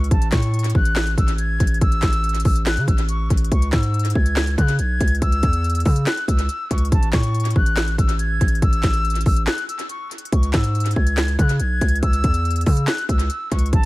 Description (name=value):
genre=hip hop, trap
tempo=141 BPM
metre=4/4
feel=half-time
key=C# minor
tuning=A4 = 441 Hz
part: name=silver concert flute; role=melody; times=0.0-13.9 s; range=A5 to G#6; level=-25 LUFS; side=left 1 dB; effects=tape echo
part: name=distorted 808-style bass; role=bass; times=0.0-13.9 s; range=A1 to C#3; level=-20 LUFS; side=equal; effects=distortion
part: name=trap drum kit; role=drums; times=0.0-13.8 s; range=handclaps, hi-hat, kick drum, snare drum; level=-20 LUFS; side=equal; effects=tape echo
room=digital ambience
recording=echo-heavy mix, vinyl crackle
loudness=-17 LUFS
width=side -20 dB against mid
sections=0.0-10.3 A section; 10.3-13.9 A section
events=break 9.5-10.3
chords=0.1 A5; 3.5 C#m; 6.9 A5; 10.3 C#m